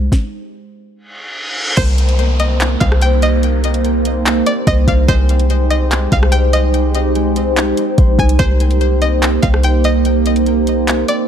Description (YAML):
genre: hip hop, atmospheric cloud-rap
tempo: 145 BPM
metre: 4/4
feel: half-time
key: C minor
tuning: A4 = 436 Hz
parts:
  - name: warbly tape-like pad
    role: sustained chords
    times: 0.0-11.3 s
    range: Ab3 to C5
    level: -18 LUFS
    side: right 3 dB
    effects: chorus, built-in reverb, sidechain pumping
  - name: warm 808-style bass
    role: bass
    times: 0.0-11.0 s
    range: Bb1 to C2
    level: -14 LUFS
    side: equal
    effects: none
  - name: smooth R&B drum kit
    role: drums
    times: 0.1-11.2 s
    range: crash cymbal, handclaps, hi-hat, kick drum, rim click, snare drum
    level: -17 LUFS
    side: equal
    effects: none
  - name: reverse cymbal and downlifter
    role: sound effects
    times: 1.1-5.1 s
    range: none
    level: -24 LUFS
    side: equal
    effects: none
  - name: string-like resonator pluck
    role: melody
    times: 1.8-11.3 s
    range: C5 to Ab5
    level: -21 LUFS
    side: left 1 dB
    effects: chorus, ping-pong delay
  - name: concert harp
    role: arpeggios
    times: 1.8-11.3 s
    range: Ab3 to C5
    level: -23 LUFS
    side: left 7 dB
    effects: ping-pong delay
room: digital ambience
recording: dark, warm production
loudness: -12 LUFS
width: side -8 dB against mid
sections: 0.0-1.8 A section; 1.8-11.3 B section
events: stop 0.1-1.8; reverse cymbal 1.1-1.8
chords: 0.0 Abmaj7/C; 1.8 Cm7; 5.1 Abmaj7/C; 8.4 Cm7